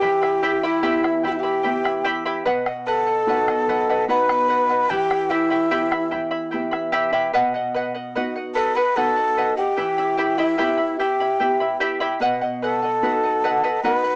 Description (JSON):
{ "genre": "andean folk, Andean ensemble", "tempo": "74 BPM", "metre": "3/4", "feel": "straight", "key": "unclear", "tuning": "A4 = 440 Hz", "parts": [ { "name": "breathy quena", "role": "melody", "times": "0.0-14.2 s", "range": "E5 to B5", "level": "-22 LUFS", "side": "equal", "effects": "none" }, { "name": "breathy reedy pan flute", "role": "second line", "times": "0.0-14.2 s", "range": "E4 to B4", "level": "-23 LUFS", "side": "equal", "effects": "cassette tape" }, { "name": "charango", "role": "accompaniment", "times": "0.0-14.2 s", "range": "E4 to B5", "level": "-23 LUFS", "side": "equal", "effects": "cassette tape" }, { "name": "nylon-string guitar", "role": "accompaniment", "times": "0.0-14.2 s", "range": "B2 to G4", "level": "-28 LUFS", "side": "right 1 dB", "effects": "cassette tape" }, { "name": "bombo", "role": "percussion", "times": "0.0-6.9 s", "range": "none", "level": "-29 LUFS", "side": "left 1 dB", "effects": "none" } ], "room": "moderate spring reverb, RT60 1.2 s, small room ambience", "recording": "home recording on cassette, small speaker sound", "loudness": "-18 LUFS", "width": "side -27 dB against mid", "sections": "0.0-7.3 A section; 7.3-14.2 A section", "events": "none", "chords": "0.0 Em; 2.5 B; 4.9 Em; 7.3 B; 9.8 Em; 12.2 B" }